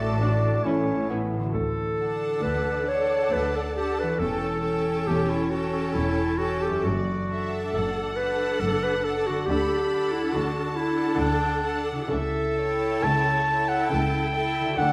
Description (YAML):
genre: classical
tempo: 68 BPM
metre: 3/4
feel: rubato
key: D major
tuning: A4 = 440 Hz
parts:
  - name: clear studio violin section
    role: melody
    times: 0.0-14.9 s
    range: A4 to B5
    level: -40 LUFS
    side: equal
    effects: none
  - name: bright clarinet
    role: second line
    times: 0.0-14.9 s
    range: D4 to A5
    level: -28 LUFS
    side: equal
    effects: none
  - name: clear studio violin section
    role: second line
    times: 0.0-14.9 s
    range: A4 to A5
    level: -40 LUFS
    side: equal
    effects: none
  - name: hollow large flute ensemble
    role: second line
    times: 0.0-1.1 s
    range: A4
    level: -39 LUFS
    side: equal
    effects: none
  - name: warm oboe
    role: second line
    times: 0.0-1.2 s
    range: C#5 to D5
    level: -36 LUFS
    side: equal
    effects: none
  - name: warm bassoon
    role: accompaniment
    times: 0.0-1.5 s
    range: A3 to D4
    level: -33 LUFS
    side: equal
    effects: none
  - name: mellow French horn section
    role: sustained chords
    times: 0.0-1.1 s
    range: none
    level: barely audible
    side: none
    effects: none
  - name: concert harp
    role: arpeggios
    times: 0.0-14.9 s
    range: F#2 to A5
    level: -37 LUFS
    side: equal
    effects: none
  - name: rich studio cello section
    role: bass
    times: 0.0-14.9 s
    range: D2 to D3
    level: -36 LUFS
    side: equal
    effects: none
  - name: rich studio double bass section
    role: bass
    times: 0.0-14.9 s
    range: E1 to D2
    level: -34 LUFS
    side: equal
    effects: none
  - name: rich studio viola section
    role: accompaniment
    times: 0.2-14.9 s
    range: C#4 to A4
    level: -33 LUFS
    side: equal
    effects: none
  - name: dark trombone section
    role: sustained chords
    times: 0.6-1.0 s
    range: E3 to C#4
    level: -32 LUFS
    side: equal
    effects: none
room: wet recital hall reverb, RT60 1.4 s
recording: none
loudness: -25 LUFS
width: mono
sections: 0.0-1.5 A section; 1.5-14.9 B section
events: none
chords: 0.0 D/A; 0.6 A; 1.5 D; 4.2 A7/E; 6.9 D/F#; 9.5 D; 12.1 A7/C#